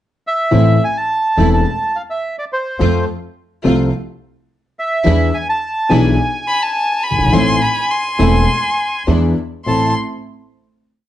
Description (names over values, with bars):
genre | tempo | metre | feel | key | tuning
tango | 105 BPM | 4/4 | rubato | A harmonic minor | A4 = 440 Hz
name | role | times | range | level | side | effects
bandoneon | melody | 0.3-9.9 s | C5 to A5 | -18 LUFS | right 1 dB | none
dark concert grand piano | accompaniment | 0.5-9.9 s | E1 to A4 | -16 LUFS | left 3 dB | none
warm symphonic string section | stabs | 0.5-9.9 s | G#3 to F4 | -23 LUFS | right 4 dB | none
upright bass | bass | 0.5-9.9 s | E1 to F2 | -17 LUFS | right 2 dB | none
warm violin | second line | 6.5-9.9 s | A5 to C6 | -19 LUFS | left 2 dB | none
room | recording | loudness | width
light reverb | nothing above 10.4 kHz | -13 LUFS | side -12 dB against mid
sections
0.0-0.5 pickup bar; 0.5-9.7 A section; 9.7-11.1 final chord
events
none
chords
0.0 N.C.; 0.5 Am; 2.8 F; 5.1 E7; 7.3 Am; 9.1 E7; 9.7 Am